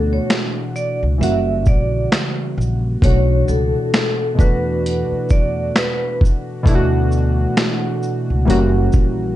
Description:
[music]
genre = lo-fi hip hop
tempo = 66 BPM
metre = 4/4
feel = swing 60% on 16ths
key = D major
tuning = A4 = 439 Hz
[part]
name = vibraphone with medium hard mallets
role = melody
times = 0.0-6.2 s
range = A4 to E5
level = -23 LUFS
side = equal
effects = low-pass filter
[part]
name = warm analog keys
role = accompaniment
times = 0.0-9.4 s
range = B2 to F#4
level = -20 LUFS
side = equal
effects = chorus, cassette tape, low-pass filter
[part]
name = upright bass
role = bass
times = 0.0-9.3 s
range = F#1 to E2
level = -19 LUFS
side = equal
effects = none
[part]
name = boom bap sampler-style drum kit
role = drums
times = 0.3-9.2 s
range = finger snaps, hi-hat, kick drum, shaker, snare drum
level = -16 LUFS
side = equal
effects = none
[sound]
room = light reverb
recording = nothing above 10.5 kHz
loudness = -15 LUFS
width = side -14 dB against mid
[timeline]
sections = 0.0-9.4 A section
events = none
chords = 0.0 Dmaj9; 1.2 F#7b9; 3.0 Bm11; 4.4 E5; 6.7 Dadd9; 8.5 F#7b9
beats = 0.30 1.21 2.12 | 3.02 3.93 4.84 5.75 | 6.66 7.57 8.48

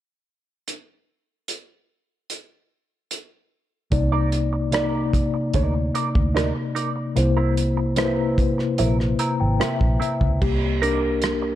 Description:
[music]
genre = lush 1970s-style soul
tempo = 74 BPM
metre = 4/4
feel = straight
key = unclear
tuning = A4 = 440 Hz
[part]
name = warm soul drum kit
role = drums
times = 0.7-11.4 s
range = crash cymbal, hi-hat, kick drum, rim click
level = -25 LUFS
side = right 1 dB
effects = none
[part]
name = mellow tine electric piano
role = accompaniment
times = 3.9-11.6 s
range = C3 to Bb5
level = -22 LUFS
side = left 2 dB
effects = medium stereo tremolo
[part]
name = clean electric guitar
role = riff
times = 3.9-11.5 s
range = C4 to D5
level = -29 LUFS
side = right 6 dB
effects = wah, lush chorus
[part]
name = vintage muted fingered electric bass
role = bass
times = 3.9-11.6 s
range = Ab1 to D2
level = -24 LUFS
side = equal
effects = none
[sound]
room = light reverb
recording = dark, warm production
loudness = -19 LUFS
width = side -12 dB against mid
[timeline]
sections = 0.7-3.9 A section; 3.9-10.4 B section; 10.4-11.6 C section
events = tine electric piano fill 8.8-10.4; tine electric piano solo 10.4-11.6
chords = 0.7 N.C.; 3.9 Cm9; 7.2 C7; 10.4 Cm9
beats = | 0.67 1.49 2.30 3.11 | 3.92 4.73 5.54 6.36 | 7.17 7.98 8.79 9.61 | 10.42 11.23

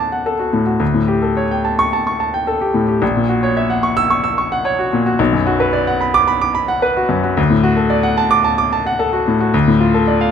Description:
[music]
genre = classical, virtuoso piano study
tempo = 110 BPM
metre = 4/4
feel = rubato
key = unclear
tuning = A4 = 439 Hz
[part]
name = clear grand piano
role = solo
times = 0.0-10.3 s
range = A#1 to E6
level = -13 LUFS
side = equal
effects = none
[sound]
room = light reverb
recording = close, detailed microphones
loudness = -13 LUFS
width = side -8 dB against mid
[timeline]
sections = 0.0-10.3 A section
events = none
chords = 0.0 D; 0.8 A7/D; 3.0 F#7/A#; 5.2 Bm; 7.4 D; 9.5 Dm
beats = 0.26 | 0.81 1.36 1.92 2.46 | 3.02 3.56 4.11 4.65 | 5.19 5.73 6.28 6.83 | 7.38 7.91 8.45 8.98 | 9.53 10.07

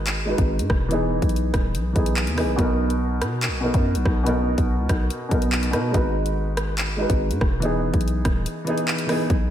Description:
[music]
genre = hip hop, drill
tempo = 143 BPM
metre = 4/4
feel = half-time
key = unclear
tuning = A4 = 437 Hz
[part]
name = felt-muted upright piano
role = accompaniment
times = 0.0-9.3 s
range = B2 to B4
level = -24 LUFS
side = equal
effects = low-pass filter
[part]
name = growling 808-style bass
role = bass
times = 0.0-9.5 s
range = D#1 to B2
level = -25 LUFS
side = equal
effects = none
[part]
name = drill drum kit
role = drums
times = 0.1-9.4 s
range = handclaps, hi-hat, kick drum, rim click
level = -24 LUFS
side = equal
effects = none
[sound]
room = light reverb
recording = none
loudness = -20 LUFS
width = side -10 dB against mid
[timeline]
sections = 0.0-9.5 A section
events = filter sweep on felt piano 0.0-9.3; kick muted 8.5-9.3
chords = 0.0 G#m7; 0.9 Emaj7; 2.6 Bmaj7; 5.9 G#m7; 7.6 Emaj7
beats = 0.07 0.49 | 0.91 1.33 1.75 2.17 | 2.59 3.01 3.43 3.85 | 4.26 4.68 5.10 5.52 | 5.94 6.36 6.78 7.20 | 7.62 8.04 8.46 8.88 | 9.30

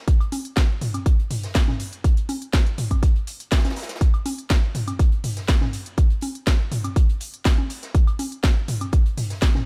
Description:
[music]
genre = house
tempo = 122 BPM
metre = 4/4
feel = straight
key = none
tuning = none
[part]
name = electronic kick drum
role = drums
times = 0.1-9.5 s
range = none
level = -20 LUFS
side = equal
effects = small room ambience
[part]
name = house drum kit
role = drums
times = 0.1-9.5 s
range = hi-hat, snare drum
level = -31 LUFS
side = equal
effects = small room ambience
[part]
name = open jazz drum kit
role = drums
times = 0.1-9.7 s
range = hi-hat, snare drum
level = -40 LUFS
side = equal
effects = high-pass filter on hats, small room ambience, high-pass filter on snare, high-pass filter on room
[part]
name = electronic woodblock, congas and toms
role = percussion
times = 0.2-9.6 s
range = none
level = -31 LUFS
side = equal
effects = sidechain pumping on perc, small room ambience, sidechain pumping on toms
[sound]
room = small room ambience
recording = none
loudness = -22 LUFS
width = mono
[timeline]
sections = 0.0-9.7 A section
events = none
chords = none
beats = | 0.08 0.57 1.06 1.55 | 2.04 2.54 3.03 3.52 | 4.01 4.50 5.00 5.49 | 5.98 6.47 6.96 7.45 | 7.95 8.44 8.93 9.42

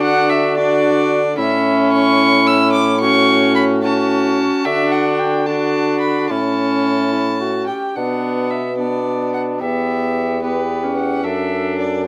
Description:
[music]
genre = classical, renaissance-style consort dance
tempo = 73 BPM (dotted quarters)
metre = 6/8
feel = straight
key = A mixolydian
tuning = A4 = 443 Hz
[part]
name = dark violin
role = melody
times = 0.0-12.1 s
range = B4 to E6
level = -23 LUFS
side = equal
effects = none
[part]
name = dark cor anglais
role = second line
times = 0.0-12.0 s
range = D4 to A4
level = -24 LUFS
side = equal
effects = none
[part]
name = rich viola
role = accompaniment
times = 0.0-12.1 s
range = B3 to D4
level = -22 LUFS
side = equal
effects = none
[part]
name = dark bassoon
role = bass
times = 0.0-12.1 s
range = E2 to D3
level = -22 LUFS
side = equal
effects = none
[sound]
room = moderate stone room reverb, RT60 1.2 s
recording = none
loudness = -17 LUFS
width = mono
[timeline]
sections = 0.0-8.0 A section; 8.0-12.1 B section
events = none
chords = 0.0 D; 1.4 A; 4.7 D; 6.3 A; 8.0 Bm; 9.6 Em; 11.2 D/F#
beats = 0.57 | 1.39 2.20 | 3.02 3.83 | 4.66 5.48 | 6.31 7.14 | 7.97 8.79 | 9.61 10.43 | 11.25 12.06

